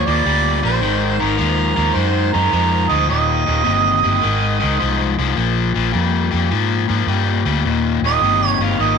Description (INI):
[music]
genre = electric blues shuffle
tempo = 105 BPM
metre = 4/4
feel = swing 67% on 8ths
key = Eb major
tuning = A4 = 438 Hz
[part]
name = mellow harmonica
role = melody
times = 0.0-9.0 s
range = Bb4 to F5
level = -18 LUFS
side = right 10 dB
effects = none
[part]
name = cranked stack guitar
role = riff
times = 0.0-9.0 s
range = Eb2 to G3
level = -18 LUFS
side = left 10 dB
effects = overdrive, spring reverb
[part]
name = vintage muted fingered electric bass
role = bass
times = 0.0-9.0 s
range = Eb1 to Ab2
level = -20 LUFS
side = right 2 dB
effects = none
[sound]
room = light reverb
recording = 1960s-style stereo with parts hard left and right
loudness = -15 LUFS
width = side -6 dB against mid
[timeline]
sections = 0.0-7.6 A section; 7.6-9.0 B section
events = harmonica solo 7.6-9.0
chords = 0.0 Bb6; 0.8 Absus2; 3.1 Eb6; 4.2 Ab6; 5.4 Bb5; 7.6 Eb6